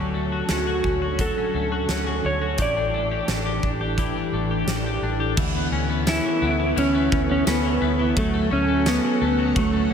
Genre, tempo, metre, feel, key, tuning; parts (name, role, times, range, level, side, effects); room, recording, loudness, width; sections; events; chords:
dream pop; 86 BPM; 4/4; straight; A4 = 440 Hz
soft string machine; sustained chords; 0.0-9.9 s; D3 to F#5; -29 LUFS; right 1 dB; ensemble chorus, shimmer reverb
twelve-string electric guitar; arpeggios; 0.0-9.9 s; E3 to G4; -27 LUFS; left 6 dB; lush chorus, ping-pong delay, shimmer reverb
vintage muted fingered electric bass; bass; 0.0-9.9 s; A1 to D2; -27 LUFS; right 1 dB
clean lap steel guitar; melody; 0.5-9.9 s; A3 to D5; -24 LUFS; right 1 dB; ping-pong delay, shimmer reverb
huge arena drum kit; drums; 0.5-9.7 s; crash cymbal, hi-hat, kick drum, ride cymbal, snare drum, tambourine; -28 LUFS; right 1 dB
moderate lush hall reverb, RT60 2.1 s; -20 LUFS; side -7 dB against mid
0.0-5.4 A section; 5.4-9.9 B section
0.0 Dmaj7; 2.6 A7sus4; 5.4 Aadd9/D; 8.2 F#m/D